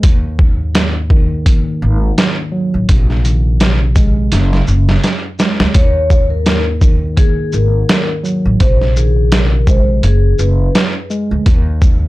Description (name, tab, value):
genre	hip hop, boom-bap hip-hop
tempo	84 BPM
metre	4/4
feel	swing 57% on 16ths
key	Eb minor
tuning	A4 = 440 Hz
part	mellow tine electric piano	accompaniment	0.0-12.1 s	Eb2 to Ab3	-20 LUFS	equal	medium stereo tremolo, cassette tape, high-pass filter, low-pass filter
part	upright bass	bass	0.0-12.1 s	Gb1 to Eb2	-14 LUFS	equal	none
part	trip hop sampler-style drum kit	drums	0.0-12.0 s	hi-hat, kick drum, shaker, snare drum	-12 LUFS	equal	none
part	vibraphone with soft mallets	melody	5.8-10.7 s	Ab4 to Db5	-20 LUFS	left 3 dB	high-pass filter, low-pass filter, plate reverb, digital delay
room	light reverb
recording	dark, warm production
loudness	-10 LUFS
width	side -18 dB against mid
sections	0.0-5.7 A section; 5.7-12.1 A section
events	drum fill 4.3-5.7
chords	0.0 Ebmadd11; 2.9 Bb9sus4; 4.3 Gbsus2; 5.7 Ebmadd11; 8.6 Bb9sus4; 10.0 Gbsus2; 11.5 Ebsus4